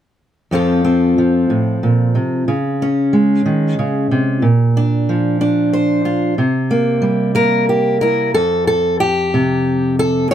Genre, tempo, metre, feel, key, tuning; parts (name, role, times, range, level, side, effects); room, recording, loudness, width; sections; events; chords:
folk, solo fingerstyle acoustic guitar; 61 BPM (dotted quarters); 6/8; straight; F major; A4 = 440 Hz
fingerpicked steel-string acoustic guitar; solo; 0.5-10.3 s; F2 to Db5; -13 LUFS; equal
light reverb; close, detailed microphones; -13 LUFS; side -10 dB against mid
0.5-8.3 A section; 8.3-10.3 B section
0.5 F; 2.5 Dbsus2; 4.4 Bbadd9; 6.4 C7; 8.3 F5